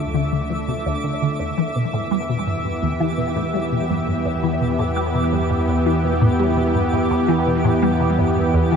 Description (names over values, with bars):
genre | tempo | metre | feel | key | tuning
ambient, sequencer-driven space music | 84 BPM | 4/4 | straight | unclear | A4 = 437 Hz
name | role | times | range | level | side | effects
lush unison pad | sustained chords | 0.0-8.8 s | D3 to E5 | -21 LUFS | equal | chorus
resonant blip pluck | riff | 0.0-8.8 s | D2 to G3 | -22 LUFS | equal | phaser, ensemble chorus, tape echo
fat analog bass | bass | 0.0-8.8 s | D2 to E2 | -26 LUFS | equal | none
twinkling granular texture | texture | 0.0-8.8 s | D6 | -32 LUFS | right 4 dB | built-in reverb
room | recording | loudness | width
wet huge ambient reverb, RT60 9.3 s | dark, warm production | -18 LUFS | side -6 dB against mid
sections
0.0-8.8 A section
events
fade-in on analog synth pad 0.0-8.8; filter sweep on synth arpeggio sound 0.0-8.8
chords
0.0 Dm; 1.4 Em